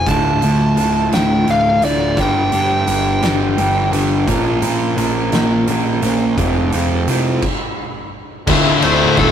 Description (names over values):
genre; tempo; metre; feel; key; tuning
quiet-loud alternative rock; 57 BPM (dotted quarters); 6/8; straight; D minor; A4 = 435 Hz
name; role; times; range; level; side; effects
fuzz lead guitar; melody; 0.0-3.9, 8.8-9.3 s; A4 to A5; -18 LUFS; equal; distortion
electric guitar through a small old amp; arpeggios; 0.0-7.4 s; D2 to Bb4; -22 LUFS; left 2 dB; spring reverb
fuzz picked electric bass; bass; 0.0-9.3 s; D1 to Bb2; -20 LUFS; equal; overdrive
sludgy distorted guitar; riff; 0.1-7.4 s; D2 to Bb3; -18 LUFS; right 3 dB; overdrive
oversized low-tuned drum kit; drums; 0.1-9.3 s; crash cymbal, hi-hat, kick drum, ride cymbal, snare drum; -22 LUFS; equal; none
thick fuzz guitar; riff; 8.5-9.3 s; D2 to D3; -18 LUFS; left 2 dB; distortion
tight distorted guitar; riff; 8.5-9.3 s; D2 to F4; -13 LUFS; left 5 dB; distortion
room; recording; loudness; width
moderate booth ambience, RT60 0.3 s; rough rehearsal-room recording, tube saturation; -13 LUFS; side -9 dB against mid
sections
0.0-8.5 A section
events
stop 7.4-8.5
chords
0.1 Dm; 2.2 G; 4.3 Bbm; 6.4 Fm; 8.5 Dm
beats
| 0.07 1.12 | 2.18 3.23 | 4.28 5.33 | 6.38 7.43 | 8.48